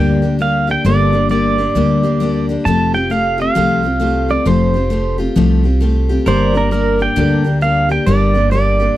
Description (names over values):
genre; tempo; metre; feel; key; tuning
honky-tonk and classic country; 133 BPM; 4/4; swing 63% on 8ths; G minor; A4 = 439 Hz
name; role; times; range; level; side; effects
pedal steel guitar; melody; 0.0-9.0 s; Bb4 to A5; -17 LUFS; right 2 dB; none
picked steel-string acoustic guitar; accompaniment; 0.0-9.0 s; G2 to G4; -16 LUFS; left 3 dB; none
upright bass; bass; 0.0-8.9 s; F1 to D2; -16 LUFS; right 1 dB; none
pedal steel guitar; sustained chords; 6.3-9.0 s; Bb4 to D5; -26 LUFS; right 2 dB; none
room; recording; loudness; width
little or no reverb; dry, close 1970s-style studio recording; -12 LUFS; side -14 dB against mid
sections
0.0-9.0 A section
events
none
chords
0.0 Gm; 2.7 Fadd9; 6.3 Gm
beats
0.39 | 0.85 1.30 1.75 2.20 | 2.65 3.10 3.56 4.01 | 4.46 4.91 5.36 5.81 | 6.26 6.71 7.17 7.62 | 8.07 8.52 8.97